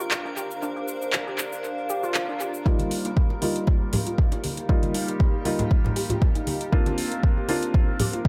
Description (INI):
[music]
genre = deep house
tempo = 118 BPM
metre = 4/4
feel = swing 55% on 16ths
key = unclear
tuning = A4 = 440 Hz
[part]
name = deep dark ambient pad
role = sustained chords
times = 0.0-8.3 s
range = D4 to F5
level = -40 LUFS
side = equal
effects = chorus, built-in reverb, vintage 12-bit sampler grit, sidechain pumping
[part]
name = warbly dusty pluck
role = arpeggios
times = 0.0-8.2 s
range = D4 to G4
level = -37 LUFS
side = equal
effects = lush chorus, vintage 12-bit sampler grit, sidechain pumping, dub echo
[part]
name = deep house drum kit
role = drums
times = 0.0-8.2 s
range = handclaps, hi-hat, shaker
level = -32 LUFS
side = equal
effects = overdrive, tape echo
[part]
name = granular cloud pad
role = texture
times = 0.0-8.3 s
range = D4 to F5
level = -37 LUFS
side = equal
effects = built-in reverb, sidechain pumping
[part]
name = swell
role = sound effects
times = 1.9-2.7 s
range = none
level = -39 LUFS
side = equal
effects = none
[part]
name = felt-muted upright piano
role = stabs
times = 2.7-8.3 s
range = G3 to F4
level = -31 LUFS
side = equal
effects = sidechain pumping, low-pass filter, dub echo
[part]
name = electronic kick drum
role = drums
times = 2.7-8.3 s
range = none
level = -23 LUFS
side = equal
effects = overdrive
[part]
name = bongos and congas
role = percussion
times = 2.7-8.2 s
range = none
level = -33 LUFS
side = equal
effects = tape echo
[sound]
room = light reverb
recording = echo-heavy mix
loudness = -24 LUFS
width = mono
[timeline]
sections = 0.0-2.7 A section; 2.7-8.3 B section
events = swell 1.9-2.7; build-up 2.7-8.3; filter sweep on felt piano 2.7-8.3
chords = 0.0 C9sus4; 2.7 F9sus4; 6.7 C9sus4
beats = 0.12 | 0.62 1.13 1.64 2.15 | 2.66 3.17 3.67 4.18 | 4.69 5.20 5.71 6.22 | 6.72 7.23 7.74 8.25